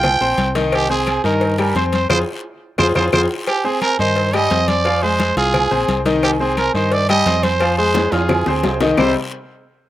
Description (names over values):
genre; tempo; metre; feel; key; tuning
latin, salsa; 174 BPM; 4/4; straight; C minor; A4 = 441 Hz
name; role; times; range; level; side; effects
growling trumpet; melody; 0.0-9.1 s; G4 to G5; -19 LUFS; right 2 dB; slapback echo
bright concert grand piano; accompaniment; 0.0-9.1 s; C3 to F6; -19 LUFS; left 3 dB; slapback echo
fingered electric bass; bass; 0.0-9.1 s; Bb1 to G2; -22 LUFS; equal; none
agogo bells and timbales; percussion; 0.0-9.1 s; none; -25 LUFS; right 6 dB; slapback echo
claves; percussion; 0.0-9.1 s; none; -27 LUFS; left 4 dB; none
congas; percussion; 0.0-9.1 s; none; -26 LUFS; left 2 dB; none
cowbell and bongos; percussion; 0.0-9.1 s; none; -25 LUFS; left 3 dB; none
guiro; percussion; 0.0-9.1 s; none; -33 LUFS; left 4 dB; none
room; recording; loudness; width
little or no reverb; recorded outdoors, with no room sound; -14 LUFS; side -14 dB against mid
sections
0.0-3.5 A section; 3.5-9.0 B section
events
band accent 2.1-3.5; drum fill 2.4-3.5, 7.9-9.0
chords
0.0 F5; 0.7 Cm; 2.1 Fm; 3.5 Cm; 4.9 Fm; 6.2 Cm; 7.6 Fm; 9.0 Cm